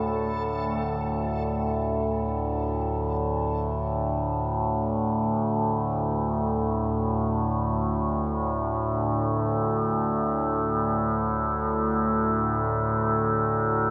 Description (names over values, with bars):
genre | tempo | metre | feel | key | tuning
dark ambient drone | free time | none | none | unclear | A4 = 440 Hz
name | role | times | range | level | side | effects
deep dark ambient pad | sustained chords | 0.0-0.8 s | none | barely audible | none | none
overtone-sweeping drone | drone | 0.0-13.9 s | D2 to A2 | -26 LUFS | equal | chorus, built-in reverb
backwards swelling texture | texture | 0.0-0.8 s | A3 to A4 | -39 LUFS | equal | built-in reverb
room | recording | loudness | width
wet plate reverb, RT60 3.3 s | none | -26 LUFS | mono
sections
0.8-13.9 A section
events
none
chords
0.0 A5/D